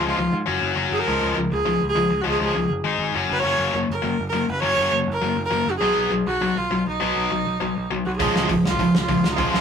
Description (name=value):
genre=punk rock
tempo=202 BPM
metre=4/4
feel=straight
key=Db mixolydian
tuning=A4 = 439 Hz
part: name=clear viola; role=melody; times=0.0-9.6 s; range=Eb4 to Db5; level=-23 LUFS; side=right 2 dB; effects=none
part: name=tight distorted guitar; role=riff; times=0.0-9.6 s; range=Cb3 to Ab4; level=-23 LUFS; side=left 4 dB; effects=distortion
part: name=overdriven picked electric bass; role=bass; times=0.0-9.6 s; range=Gb1 to Ab2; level=-28 LUFS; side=right 1 dB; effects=none
part: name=tight distorted guitar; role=riff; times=8.2-9.6 s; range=Db3 to Ab3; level=-22 LUFS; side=right 5 dB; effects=distortion
part: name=loose indie drum kit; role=drums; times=8.2-9.6 s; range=hi-hat, kick drum, snare drum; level=-24 LUFS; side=equal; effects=none
room=light reverb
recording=rough rehearsal-room recording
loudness=-19 LUFS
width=side -7 dB against mid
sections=0.0-9.6 A section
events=none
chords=0.5 Gb5; 1.1 Db; 2.8 Ab5; 3.1 Gb5; 3.4 Gb; 5.8 Cb; 8.2 Db